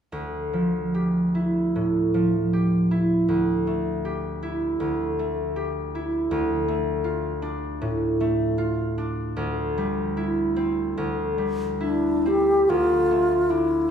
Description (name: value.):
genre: classical, impressionist duo for alto flute and harp.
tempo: 64-82 BPM.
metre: 4/4.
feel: rubato.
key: D minor.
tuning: A4 = 443 Hz.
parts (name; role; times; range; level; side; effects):
concert harp; accompaniment; 0.1-13.9 s; D2 to G4; -23 LUFS; right 1 dB; none.
alto flute; melody; 11.8-13.9 s; D4 to G4; -19 LUFS; left 1 dB; none.
room: wet recital hall reverb, RT60 1.7 s.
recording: heard from further back in the room.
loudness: -21 LUFS.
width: side -8 dB against mid.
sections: 0.1-12.7 A section; 12.7-13.9 B section.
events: none.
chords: 0.1 Dmadd9; 3.3 A5/D; 6.3 Dm; 9.4 Cadd9/D; 12.7 Dm9.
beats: | 0.12 0.94 1.75 2.52 | 3.28 4.04 4.80 5.56 | 6.32 7.05 7.82 8.59 | 9.37 10.17 10.97 11.82 | 12.71 13.50.